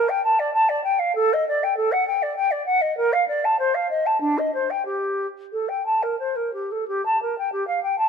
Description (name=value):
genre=classical, baroque-style fantasia for unaccompanied flute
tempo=86-101 BPM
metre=3/4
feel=rubato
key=G minor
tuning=A4 = 440 Hz
part: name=mellow hollow silver concert flute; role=solo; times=0.0-8.1 s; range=D4 to A5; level=-20 LUFS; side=equal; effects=none
room=light reverb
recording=close, detailed microphones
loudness=-20 LUFS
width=side -6 dB against mid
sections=0.0-6.9 A section; 6.9-8.1 B section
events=none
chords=none